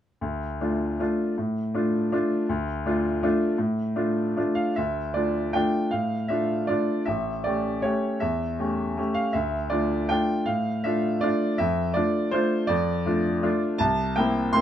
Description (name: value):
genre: classical, piano waltz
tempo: 143-171 BPM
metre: 3/4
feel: rubato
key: D minor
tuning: A4 = 440 Hz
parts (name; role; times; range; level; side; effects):
- bright baby grand piano; solo; 0.2-14.6 s; A1 to C6; -23 LUFS; equal; none
room: little or no reverb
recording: close, detailed microphones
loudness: -23 LUFS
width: side -10 dB against mid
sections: 0.2-4.8 A section; 4.8-14.6 B section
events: none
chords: 0.2 Dm; 7.1 A7; 9.3 Dm; 11.6 Dm/F; 13.8 C7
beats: | 0.22 0.61 1.00 | 1.38 1.75 2.13 | 2.50 2.86 3.23 | 3.60 3.97 4.37 | 4.78 5.16 5.55 | 5.92 6.30 6.69 | 7.08 7.45 7.84 | 8.22 8.60 8.98 | 9.35 9.72 10.10 | 10.48 10.85 11.23 | 11.60 11.96 12.33 | 12.70 13.06 13.44 | 13.81 14.17 14.55